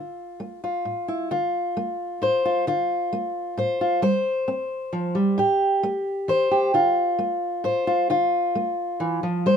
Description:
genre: folk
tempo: 133 BPM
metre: 3/4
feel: straight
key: D minor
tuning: A4 = 442 Hz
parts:
  - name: fingerpicked steel-string acoustic guitar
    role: solo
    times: 0.0-9.6 s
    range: A2 to C5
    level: -21 LUFS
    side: equal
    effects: none
room: light reverb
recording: minimal, uncompressed stereo recording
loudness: -21 LUFS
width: side -7 dB against mid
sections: 0.0-1.3 A section; 1.3-9.6 B section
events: none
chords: 0.0 Dmadd9; 1.3 Dm; 4.0 Gsus4; 5.4 Am7; 6.7 Dm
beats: 0.40 0.85 | 1.31 1.76 2.21 | 2.67 3.12 3.57 | 4.02 4.48 4.93 | 5.38 5.83 6.29 | 6.74 7.19 7.64 | 8.10 8.55 9.00 | 9.45

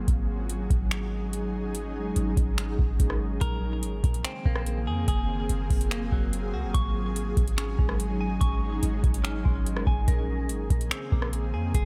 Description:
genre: hip hop, atmospheric cloud-rap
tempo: 144 BPM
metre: 4/4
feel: half-time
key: unclear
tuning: A4 = 441 Hz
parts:
  - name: ethereal airy pad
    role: sustained chords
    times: 0.0-11.9 s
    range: Db3 to Ab4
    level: -35 LUFS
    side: equal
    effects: ensemble chorus, built-in reverb, sidechain pumping
  - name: clean 808-style bass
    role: bass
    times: 0.0-11.9 s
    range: Gb1 to F2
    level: -31 LUFS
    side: equal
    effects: none
  - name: booming analog drum machine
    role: drums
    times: 0.1-11.9 s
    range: finger snaps, hi-hat, kick drum, rim click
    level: -28 LUFS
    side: equal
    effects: none
  - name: direct-recorded clean electric guitar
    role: arpeggios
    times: 3.4-11.9 s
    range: Gb3 to Db6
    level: -39 LUFS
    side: equal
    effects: delay
room: digital ambience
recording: none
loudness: -27 LUFS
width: mono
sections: 0.0-3.4 A section; 3.4-11.9 B section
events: none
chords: 0.1 Ab7sus4; 3.4 Bbm11; 5.1 Gbmaj9#11; 6.7 Ab7sus4; 10.1 Bbm11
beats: | 0.08 0.50 0.91 1.33 | 1.75 2.16 2.58 3.00 | 3.41 3.83 4.25 4.66 | 5.08 5.50 5.91 6.33 | 6.75 7.16 7.58 8.00 | 8.41 8.83 9.25 9.66 | 10.08 10.50 10.91 11.33 | 11.75

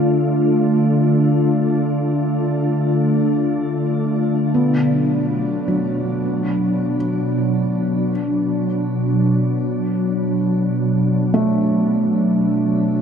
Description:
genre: ambient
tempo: free time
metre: none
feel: none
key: unclear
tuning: A4 = 439 Hz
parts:
  - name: glassy FM pad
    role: sustained chords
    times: 0.0-13.0 s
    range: B2 to F4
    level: -17 LUFS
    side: equal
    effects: ensemble chorus, built-in reverb, shimmer reverb
  - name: felt-muted upright piano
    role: arpeggios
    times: 4.5-13.0 s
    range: F#3 to B3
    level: -22 LUFS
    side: right 2 dB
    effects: diffuse ambient delay
room: wet huge ambient reverb, RT60 9.1 s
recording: none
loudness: -16 LUFS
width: side -7 dB against mid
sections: 0.0-13.0 A section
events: none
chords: 0.0 Dm; 4.5 Bm7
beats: free time

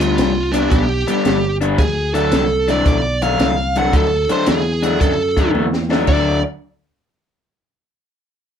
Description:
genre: electric blues shuffle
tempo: 112 BPM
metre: 4/4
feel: swing 67% on 8ths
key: D mixolydian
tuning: A4 = 440 Hz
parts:
  - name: biting lead guitar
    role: melody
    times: 0.0-6.4 s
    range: D4 to F#5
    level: -19 LUFS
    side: right 2 dB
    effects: overdrive
  - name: raw garage guitar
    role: riff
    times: 0.0-6.4 s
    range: G2 to D4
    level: -19 LUFS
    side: left 3 dB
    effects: overdrive
  - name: fingered electric bass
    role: bass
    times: 0.0-6.4 s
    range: G1 to F#2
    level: -22 LUFS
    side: equal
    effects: none
  - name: compact cocktail drum kit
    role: drums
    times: 0.0-6.2 s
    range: crash cymbal, hi-hat, kick drum, snare drum, toms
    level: -19 LUFS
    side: equal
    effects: none
room: moderate small room reverb, RT60 0.5 s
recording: band playing live in one room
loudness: -14 LUFS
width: side -8 dB against mid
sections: 0.0-6.1 A section; 6.1-8.2 B section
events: drum fill 5.5-6.1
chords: 0.0 G; 1.8 D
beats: 0.19 0.72 1.26 | 1.79 2.33 2.86 3.40 | 3.93 4.47 5.00 5.54 | 6.07

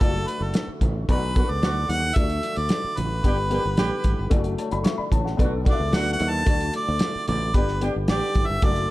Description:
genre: uptempo 1960s-style soul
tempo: 111 BPM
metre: 4/4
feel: straight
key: D major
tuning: A4 = 445 Hz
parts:
  - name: clear harmonica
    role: melody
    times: 0.0-8.9 s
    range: A4 to A5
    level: -27 LUFS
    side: right 1 dB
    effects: none
  - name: dark upright piano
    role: accompaniment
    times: 0.0-8.9 s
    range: A3 to C#6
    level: -29 LUFS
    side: left 4 dB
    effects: none
  - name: tonewheel organ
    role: sustained chords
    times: 0.0-8.9 s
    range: D3 to A4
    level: -36 LUFS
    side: equal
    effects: slow rotary speaker
  - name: fingered electric bass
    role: bass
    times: 0.0-8.8 s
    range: F#1 to Eb2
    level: -27 LUFS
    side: equal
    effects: none
  - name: cloth-damped thuddy drum kit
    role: drums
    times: 0.0-8.9 s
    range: hi-hat, kick drum, snare drum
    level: -23 LUFS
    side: equal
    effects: none
  - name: congas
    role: percussion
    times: 0.0-8.8 s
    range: none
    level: -36 LUFS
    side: right 3 dB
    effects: none
  - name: mellow horn section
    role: second line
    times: 1.1-8.5 s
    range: B3 to G4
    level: -32 LUFS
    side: right 2 dB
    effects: none
room: small room ambience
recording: dark, warm production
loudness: -20 LUFS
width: side -17 dB against mid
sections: 0.0-8.9 A section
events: harmonica solo 0.0-8.9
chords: 0.0 D/F#; 1.1 Bm7; 2.2 D; 3.2 G; 4.3 D/F#; 5.4 Bm7; 6.5 D; 7.5 G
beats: | 0.01 0.55 1.09 1.62 | 2.16 2.70 3.24 3.78 | 4.32 4.86 5.39 5.93 | 6.47 7.01 7.55 8.09 | 8.62

